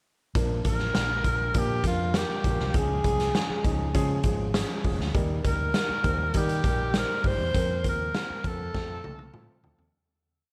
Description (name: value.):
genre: uptempo 1960s-style soul.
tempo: 100 BPM.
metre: 4/4.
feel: straight.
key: unclear.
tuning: A4 = 441 Hz.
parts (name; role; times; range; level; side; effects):
dark concert grand piano; accompaniment; 0.4-9.9 s; F3 to C5; -35 LUFS; equal; none.
vintage muted fingered electric bass; bass; 0.4-9.9 s; F1 to Eb3; -33 LUFS; equal; none.
raw garage drum kit; drums; 0.4-9.9 s; hi-hat, kick drum, snare drum, toms; -30 LUFS; equal; none.
breathy tenor saxophone; melody; 0.7-9.7 s; F4 to C5; -33 LUFS; equal; tape echo.
room: light reverb, studio reverb.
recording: none.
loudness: -27 LUFS.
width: mono.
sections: 0.3-9.9 verse.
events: fade-out 7.5-9.9; drum fill 8.7-9.9.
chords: 0.3 Bb; 2.7 Db; 5.1 Eb; 7.5 Fsus4; 8.7 F.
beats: | 0.34 0.94 1.54 2.14 | 2.74 3.34 3.94 4.54 | 5.14 5.75 6.34 6.95 | 7.54 8.14 8.74 9.34.